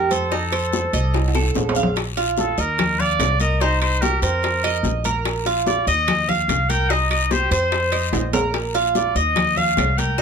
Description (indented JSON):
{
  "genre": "latin, Cuban son and guajira",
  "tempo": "146 BPM",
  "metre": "4/4",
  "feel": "straight",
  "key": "Bb major",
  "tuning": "A4 = 437 Hz",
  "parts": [
    { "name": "trumpet with straight mute", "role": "melody", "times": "0.0-10.2 s", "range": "A4 to G5", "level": "-22 LUFS", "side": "left 1 dB", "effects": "none" },
    { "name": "Cuban tres", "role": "arpeggios", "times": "0.0-10.2 s", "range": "Eb4 to F5", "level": "-23 LUFS", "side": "right 5 dB", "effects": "none" },
    { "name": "upright bass", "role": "bass", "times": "0.0-10.2 s", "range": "Bb1 to F2", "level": "-23 LUFS", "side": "equal", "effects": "none" },
    { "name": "congas", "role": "percussion", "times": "0.1-10.2 s", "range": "none", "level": "-28 LUFS", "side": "left 4 dB", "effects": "none" },
    { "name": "guiro", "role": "percussion", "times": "0.1-10.2 s", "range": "none", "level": "-33 LUFS", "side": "left 6 dB", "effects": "none" },
    { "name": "timbales", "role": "percussion", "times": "0.1-10.2 s", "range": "none", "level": "-27 LUFS", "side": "right 4 dB", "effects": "none" },
    { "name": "bongos", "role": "percussion", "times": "0.3-10.2 s", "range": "none", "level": "-28 LUFS", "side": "left 8 dB", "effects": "none" },
    { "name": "claves", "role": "percussion", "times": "0.5-10.0 s", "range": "none", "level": "-32 LUFS", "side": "left 5 dB", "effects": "none" }
  ],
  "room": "light reverb",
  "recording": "close, detailed microphones",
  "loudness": "-17 LUFS",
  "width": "side -6 dB against mid",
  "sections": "0.0-2.0 A section; 2.0-10.2 B section",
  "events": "drum fill 1.1-2.0, 8.1-8.5",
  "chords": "0.3 F7; 2.0 Bb5; 2.8 Ebsus2; 3.6 Cm; 4.4 F7sus4; 5.3 Bb5; 6.1 Ebsus2; 6.9 Cm; 7.7 F7sus4; 8.5 Bb5; 9.4 Ebsus2",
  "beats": "| 0.32 0.73 1.14 1.55 | 1.96 2.38 2.79 3.20 | 3.61 4.02 4.43 4.84 | 5.25 5.67 6.08 6.49 | 6.90 7.31 7.72 8.13 | 8.54 8.96 9.37 9.78 | 10.19"
}